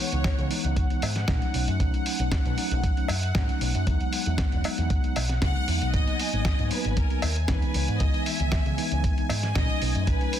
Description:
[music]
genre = nu-disco, nu disco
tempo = 116 BPM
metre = 4/4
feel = swing 53% on 16ths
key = unclear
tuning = A4 = 440 Hz
[part]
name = rich studio violin section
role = melody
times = 0.0-0.7, 5.4-10.4 s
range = A#4 to F#5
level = -33 LUFS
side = equal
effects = ping-pong delay
[part]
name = mellow tine electric piano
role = accompaniment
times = 0.0-10.4 s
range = D#3 to D#4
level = -31 LUFS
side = equal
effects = medium stereo tremolo
[part]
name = lush unison pad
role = sustained chords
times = 0.0-10.4 s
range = F#5 to G#5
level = -35 LUFS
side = equal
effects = chorus, sidechain pumping
[part]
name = picked electric bass with an envelope filter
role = bass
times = 0.1-10.2 s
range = E1 to C#3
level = -27 LUFS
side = equal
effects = none
[part]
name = dusty soul sampler-style drum kit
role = drums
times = 0.1-10.4 s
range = hi-hat, snare drum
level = -32 LUFS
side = equal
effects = none
[part]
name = electronic kick drum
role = drums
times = 0.2-10.2 s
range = none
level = -26 LUFS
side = equal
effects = none
[part]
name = cowbell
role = percussion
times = 1.0-9.4 s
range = none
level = -35 LUFS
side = left 4 dB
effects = none
[sound]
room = little or no reverb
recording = dense, heavily limited modern master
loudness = -23 LUFS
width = side -10 dB against mid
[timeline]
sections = 0.0-10.4 A section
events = none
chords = 0.0 C#m7; 1.5 B7; 3.9 Emaj7; 5.9 G#m7; 7.7 C#m7; 9.8 B7

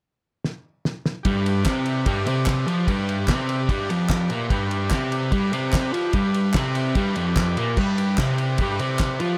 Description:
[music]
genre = garage rock duo or trio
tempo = 147 BPM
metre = 4/4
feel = straight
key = G mixolydian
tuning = A4 = 442 Hz
[part]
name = cloth-damped thuddy drum kit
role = drums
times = 0.4-9.3 s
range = crash cymbal, kick drum, ride cymbal, snare drum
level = -28 LUFS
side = equal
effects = none
[part]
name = overdriven combo organ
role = sustained chords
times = 1.2-9.4 s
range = G4 to D5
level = -34 LUFS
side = equal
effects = spring reverb
[part]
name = fuzz guitar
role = riff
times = 1.3-9.4 s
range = F2 to F4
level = -24 LUFS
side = equal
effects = distortion
[part]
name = group handclap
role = percussion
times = 1.7-9.1 s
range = none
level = -35 LUFS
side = equal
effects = none
[sound]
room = light reverb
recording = none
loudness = -23 LUFS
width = mono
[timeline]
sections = 0.0-1.2 A section; 1.2-9.4 B section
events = drum fill 0.4-1.2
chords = 0.0 N.C.; 1.2 G

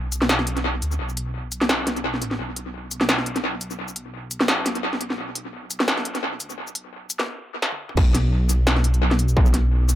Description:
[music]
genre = half-time drum and bass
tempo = 172 BPM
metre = 4/4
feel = swing 55% on 16ths, half-time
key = B minor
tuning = A4 = 439 Hz
[part]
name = dark detuned saw bass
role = bass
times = 0.0-10.0 s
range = A1 to D2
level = -24 LUFS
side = equal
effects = tube saturation
[part]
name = industrial drum kit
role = drums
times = 0.1-10.0 s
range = crash cymbal, hi-hat, shaker, snare drum, toms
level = -23 LUFS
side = equal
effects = tape echo
[part]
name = electronic kick drum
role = drums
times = 8.0-9.4 s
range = none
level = -18 LUFS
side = equal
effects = distortion
[sound]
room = moderate spring reverb, RT60 1.1 s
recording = echo-heavy mix, high-pass filter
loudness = -20 LUFS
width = side -13 dB against mid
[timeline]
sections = 0.0-8.0 A section; 8.0-10.0 B section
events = build-up 0.0-8.0; filter sweep 0.0-8.0; drum fill 7.6-8.0; drop 8.0-10.0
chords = none

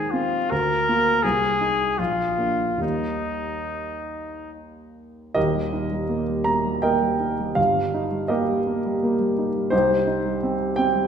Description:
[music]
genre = classical, romantic duo for trumpet and grand piano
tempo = 66-87 BPM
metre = 3/4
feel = rubato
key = Eb major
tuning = A4 = 440 Hz
[part]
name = warm trumpet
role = melody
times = 0.0-4.5 s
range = Eb4 to Bb4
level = -23 LUFS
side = left 2 dB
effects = none
[part]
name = warm baby grand piano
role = accompaniment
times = 0.0-11.1 s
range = Eb1 to Bb5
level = -22 LUFS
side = right 1 dB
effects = none
[sound]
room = wet scoring stage reverb, RT60 1.7 s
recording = minimal, uncompressed stereo recording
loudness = -20 LUFS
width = side -7 dB against mid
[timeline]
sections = 0.0-5.4 A section; 5.4-11.1 B section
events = none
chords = 0.0 Fm7/Eb; 0.5 Bb/D; 1.2 Ab/C; 2.0 Bb; 2.8 Eb; 7.6 Eb/G; 9.7 Cm

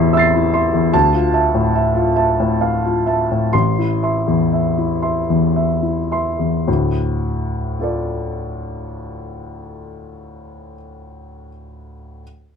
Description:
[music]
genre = neoclassical minimalist piano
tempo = 53-77 BPM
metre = 3/4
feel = rubato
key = D minor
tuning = A4 = 440 Hz
[part]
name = warm upright piano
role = solo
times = 0.0-12.2 s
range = A1 to C7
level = -16 LUFS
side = equal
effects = none
[sound]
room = moderate small room reverb, RT60 0.5 s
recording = close, detailed microphones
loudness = -15 LUFS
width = side -6 dB against mid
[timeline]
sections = 0.0-6.7 A section; 6.7-10.0 B section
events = slowing down 0.0-6.7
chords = 0.0 Am; 0.9 Dmadd9; 3.5 Am; 6.7 Dm

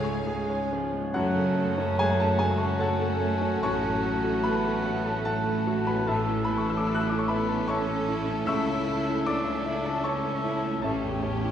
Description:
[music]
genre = classical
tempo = 74 BPM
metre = 3/4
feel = uneven beats, rubato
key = F# minor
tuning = A4 = 440 Hz
[part]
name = warm baby grand piano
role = melody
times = 0.0-11.5 s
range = A1 to F#6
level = -27 LUFS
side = left 1 dB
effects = none
[part]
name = warm studio violin section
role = melody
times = 0.0-11.5 s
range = F#4 to E#5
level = -44 LUFS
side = left 3 dB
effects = none
[part]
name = rich studio violin section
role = second line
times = 0.0-11.5 s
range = G3 to C#5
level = -39 LUFS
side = left 3 dB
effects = none
[part]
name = small flute group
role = second line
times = 0.0-11.5 s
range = C#5 to A5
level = -38 LUFS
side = left 1 dB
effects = none
[part]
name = rich studio viola section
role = accompaniment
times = 0.0-11.5 s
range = E#3 to C#4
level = -36 LUFS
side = right 1 dB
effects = none
[part]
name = mellow French horn section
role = sustained chords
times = 0.0-11.5 s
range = G#3 to G4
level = -37 LUFS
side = left 2 dB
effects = none
[part]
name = mellow trumpet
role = stabs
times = 0.0-0.8 s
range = G#4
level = -40 LUFS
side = right 4 dB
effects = none
[part]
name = clear studio cello section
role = bass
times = 0.0-11.5 s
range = C#3 to F#4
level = -34 LUFS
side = right 3 dB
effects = none
[part]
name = clear studio double bass section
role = bass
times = 0.0-11.5 s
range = A1 to F#2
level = -35 LUFS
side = equal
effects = none
[part]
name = mellow tuba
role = bass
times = 0.0-11.5 s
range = F#1 to C#2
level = -37 LUFS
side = right 2 dB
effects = none
[part]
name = warm cor anglais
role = second line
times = 1.1-11.5 s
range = C#5 to F#5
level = -36 LUFS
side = right 3 dB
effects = none
[sound]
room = wet scoring stage reverb, RT60 1.6 s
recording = heard from further back in the room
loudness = -24 LUFS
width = side -9 dB against mid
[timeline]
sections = 0.0-1.1 A section; 1.1-11.5 B section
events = none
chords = 0.0 C#; 1.1 F#m; 3.6 F#m/A; 6.1 A; 8.5 A/C#; 10.8 A7

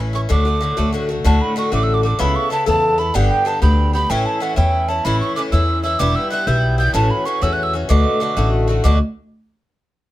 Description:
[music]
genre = celtic folk, Celtic jig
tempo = 126 BPM (dotted quarters)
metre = 6/8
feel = straight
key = D major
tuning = A4 = 440 Hz
[part]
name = Irish bouzouki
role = accompaniment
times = 0.0-9.0 s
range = G2 to A4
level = -20 LUFS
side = left 2 dB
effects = none
[part]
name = upright bass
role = bass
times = 0.0-9.0 s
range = E1 to E2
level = -17 LUFS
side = equal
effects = none
[part]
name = mellow hollow tin whistle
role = melody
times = 0.2-9.0 s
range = F#5 to G6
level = -21 LUFS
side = right 2 dB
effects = none
[sound]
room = little or no reverb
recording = close, detailed microphones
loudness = -15 LUFS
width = side -15 dB against mid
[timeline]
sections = 0.0-1.2 A section; 1.2-8.8 B section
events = none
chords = 0.3 D; 2.2 Aadd9/C#; 3.1 G; 4.1 A; 6.0 Em; 6.9 A6; 7.9 D6

